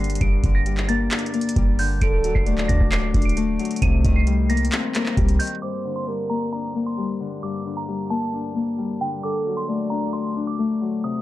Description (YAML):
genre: hip hop, trap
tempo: 133 BPM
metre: 4/4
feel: half-time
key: G harmonic minor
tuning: A4 = 440 Hz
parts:
  - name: glassy synth bell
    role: melody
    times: 0.0-11.2 s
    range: G5 to Eb7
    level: -31 LUFS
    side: right 3 dB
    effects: chorus, low-pass filter, tape echo
  - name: Celtic harp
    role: accompaniment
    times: 0.0-11.2 s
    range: G2 to D5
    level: -24 LUFS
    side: left 4 dB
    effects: low-pass filter
  - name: clean 808-style bass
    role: bass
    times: 0.0-5.4 s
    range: D1 to D2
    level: -22 LUFS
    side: equal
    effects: none
  - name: booming analog drum machine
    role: drums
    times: 0.0-5.6 s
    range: handclaps, hi-hat, kick drum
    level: -22 LUFS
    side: equal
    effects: none
  - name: breathy flute-like synth lead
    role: second line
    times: 2.0-2.9, 5.6-6.5, 9.2-10.1 s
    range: A4 to D5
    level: -30 LUFS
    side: right 3 dB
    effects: chorus, tape echo
room: little or no reverb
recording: dark, warm production, low-pass filter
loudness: -20 LUFS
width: side -15 dB against mid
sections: 0.0-5.6 A section; 5.6-11.2 B section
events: filter sweep 5.6-11.2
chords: 0.0 Gm; 2.0 D; 3.8 Cm7; 5.6 Gm; 9.2 D